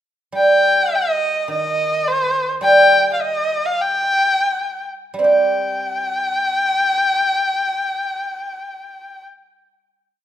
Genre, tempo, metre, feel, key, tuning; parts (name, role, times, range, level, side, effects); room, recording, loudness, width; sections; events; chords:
chinese traditional, Chinese chamber ensemble; free time; A4 = 440 Hz
guzheng; accompaniment; 0.3-10.2 s; Eb3 to G4; -17 LUFS; right 3 dB
warm erhu; melody; 0.4-9.3 s; C5 to G5; -17 LUFS; left 2 dB
moderate recital hall reverb, RT60 1.7 s; minimal, uncompressed stereo recording; -15 LUFS; side -11 dB against mid
0.3-5.2 A section; 5.2-8.5 final chord
slowing down 2.6-5.2